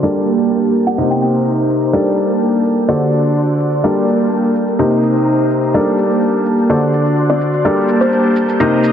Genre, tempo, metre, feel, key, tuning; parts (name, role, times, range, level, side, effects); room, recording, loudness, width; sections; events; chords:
piano house; 126 BPM; 4/4; straight; G harmonic minor; A4 = 440 Hz
string machine, violins; sustained chords; 0.0-8.9 s; Bb3 to G6; -19 LUFS; right 1 dB; ensemble chorus
bright upright piano; riff; 0.0-8.9 s; C3 to Eb5; -15 LUFS; left 1 dB; dub echo
shaker; drums; 0.0-8.9 s; -42 LUFS; right 4 dB
downlifter; sound effects; 0.0-1.9 s; -37 LUFS; left 1 dB
airy breathy pad; texture; 0.0-8.9 s; Bb3 to C6; -18 LUFS; right 1 dB; chorus
kalimba; melody; 0.9-1.3, 7.3-8.2 s; C5 to G5; -20 LUFS; left 1 dB; dub echo
moderate plate reverb, RT60 1.8 s, digital ambience; dense, heavily limited modern master, low-pass filter; -12 LUFS; side -9 dB against mid
0.0-8.9 A section
filter sweep 0.0-8.9
0.0 Gmadd9; 1.0 Cm7; 1.9 Gmadd9; 2.9 D7; 3.8 Gmadd9; 4.8 Cm7; 5.7 Gmadd9; 6.7 D7; 7.6 Gmadd9